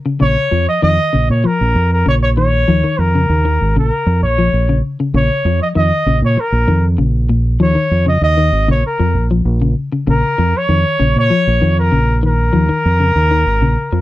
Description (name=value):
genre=afrobeat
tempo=97 BPM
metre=4/4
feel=straight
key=Bb minor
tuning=A4 = 440 Hz
part: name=electric guitar at the edge of break-up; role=arpeggios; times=0.1-14.0 s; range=Bb2 to F3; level=-18 LUFS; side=left 3 dB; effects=none
part: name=warm trumpet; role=melody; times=0.2-14.0 s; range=Bb4 to Eb5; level=-16 LUFS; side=equal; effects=none
part: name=fingered electric bass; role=bass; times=0.2-14.0 s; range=Ab1 to Bb2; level=-14 LUFS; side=right 1 dB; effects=none
room=little or no reverb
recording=dry, close 1970s-style studio recording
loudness=-12 LUFS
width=side -16 dB against mid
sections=0.0-14.0 A section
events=none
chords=0.0 Bbm